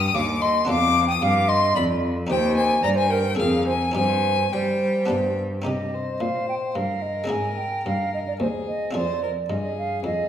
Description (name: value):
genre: classical, baroque-style sonata movement with continuo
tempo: 110 BPM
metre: 3/4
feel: straight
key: C minor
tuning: A4 = 439 Hz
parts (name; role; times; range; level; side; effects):
- rich violin; melody; 0.0-10.3 s; G4 to Eb6; -25 LUFS; left 4 dB; none
- buff-stop harpsichord; accompaniment; 0.0-10.3 s; Eb2 to Ab4; -30 LUFS; left 2 dB; none
- clear cello; bass; 0.0-10.3 s; Eb2 to G3; -26 LUFS; equal; none
- hollow concert flute; second line; 0.1-10.3 s; Ab4 to Ab5; -25 LUFS; right 3 dB; none
room: wet recital hall reverb, RT60 1.8 s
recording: recorded in a church or concert hall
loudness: -20 LUFS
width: side -10 dB against mid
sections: 0.0-5.7 A section; 5.7-10.3 A section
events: none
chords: 0.0 D7(b5, no3); 0.7 G7/F; 2.3 Cm/Eb; 3.4 Fm; 4.0 Cm/G; 5.1 G; 5.7 Cm; 7.3 Ab; 8.9 Fm